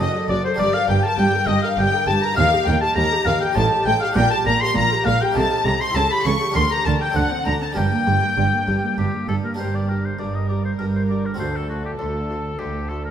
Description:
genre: classical, baroque-style concerto movement with solo episodes.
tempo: 100 BPM.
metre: 3/4.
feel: straight.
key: G minor.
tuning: A4 = 440 Hz.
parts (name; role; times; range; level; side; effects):
clear oboe; melody; 0.0-13.1 s; F#4 to C#6; -24 LUFS; left 2 dB; none.
rich chamber violin section; melody; 0.0-13.0 s; C5 to C#6; -25 LUFS; left 5 dB; none.
rich symphonic violin section; second line; 0.0-13.1 s; G4 to C#6; -28 LUFS; left 2 dB; none.
harpsichord; accompaniment; 0.0-13.1 s; D2 to D5; -29 LUFS; equal; none.
rich symphonic viola section; accompaniment; 0.0-13.0 s; G3 to Bb4; -28 LUFS; right 1 dB; none.
rich chamber double bass section; bass; 0.0-13.1 s; F#1 to Eb2; -25 LUFS; right 3 dB; none.
warm chamber cello section; bass; 0.0-13.1 s; D2 to D3; -24 LUFS; right 3 dB; none.
room: moderate recital hall reverb, RT60 1.6 s.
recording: none.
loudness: -17 LUFS.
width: side -9 dB against mid.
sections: 0.0-9.6 A section; 9.6-13.1 B section.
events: none.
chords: 0.0 D/F#; 0.6 Gm; 2.4 Eb; 3.6 Am7b5; 4.2 Gm/Bb; 5.4 Am7b5/C; 6.0 A7/C#; 6.6 Gm/D; 7.2 D7; 7.8 Gm; 11.4 D7.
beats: | 0.59 1.18 1.78 | 2.37 2.96 3.56 | 4.16 4.75 5.35 | 5.95 6.55 7.16 | 7.76 8.38 8.98 | 9.59 10.19 10.79 | 11.39 11.99 12.59.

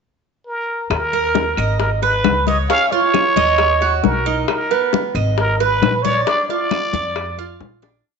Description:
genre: latin, Cuban son and guajira.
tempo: 134 BPM.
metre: 4/4.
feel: straight.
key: Eb minor.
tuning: A4 = 442 Hz.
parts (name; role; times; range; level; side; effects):
trumpet with plunger mute; melody; 0.5-7.8 s; Bb4 to F5; -19 LUFS; equal; none.
upright bass; bass; 0.9-8.0 s; Ab1 to F2; -22 LUFS; left 1 dB; none.
bongos; percussion; 0.9-7.9 s; none; -24 LUFS; left 13 dB; none.
claves; percussion; 0.9-7.4 s; none; -32 LUFS; right 13 dB; none.
congas; percussion; 0.9-8.1 s; none; -23 LUFS; left 14 dB; none.
Cuban tres; arpeggios; 1.1-8.0 s; B3 to Eb5; -20 LUFS; right 9 dB; none.
room: moderate echo chamber reverb, RT60 1.7 s, small room reverb.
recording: 1960s-style stereo with parts hard left and right, nothing above 7.8 kHz.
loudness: -15 LUFS.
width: side -5 dB against mid.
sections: 0.0-0.9 pickup bar; 0.9-8.1 verse.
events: fade-out 6.3-8.1; drum fill 7.8.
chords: 0.0 N.C.; 0.9 Eb5; 1.8 Abm; 2.7 Db; 3.6 Ebm; 4.5 B; 5.4 Abm; 6.3 Bb.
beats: 0.01 0.46 | 0.91 1.35 1.80 2.25 | 2.70 3.14 3.59 4.04 | 4.49 4.93 5.38 5.83 | 6.27 6.72 7.16 7.61.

